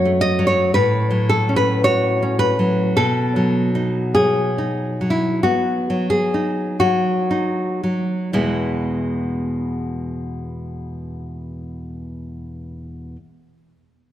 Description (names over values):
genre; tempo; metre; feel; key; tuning
romantic piece for solo classical guitar; 37-58 BPM; 4/4; rubato; E major; A4 = 438 Hz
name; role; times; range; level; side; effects
nylon-string guitar; solo; 0.0-13.2 s; E2 to D#5; -18 LUFS; equal; none
room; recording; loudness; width
moderate concert hall reverb, RT60 2.5 s; none; -17 LUFS; side -12 dB against mid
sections
0.0-8.3 A section; 8.3-14.1 B section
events
slowing down 0.0-8.3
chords
0.0 F#m; 0.7 F#m/A; 3.0 B7; 8.3 E